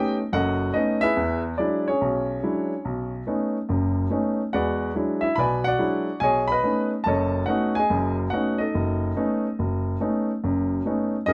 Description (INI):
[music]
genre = solo jazz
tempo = 143 BPM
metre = 4/4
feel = swing 68% on 8ths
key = B mixolydian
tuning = A4 = 440 Hz
[part]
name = warm grand piano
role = solo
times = 0.0-11.3 s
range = F#1 to B5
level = -24 LUFS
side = equal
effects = none
[sound]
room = light reverb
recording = none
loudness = -24 LUFS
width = mono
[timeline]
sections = 0.0-11.3 A section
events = none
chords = 0.0 B9; 1.2 E9; 2.8 B9; 4.5 E9; 6.2 B9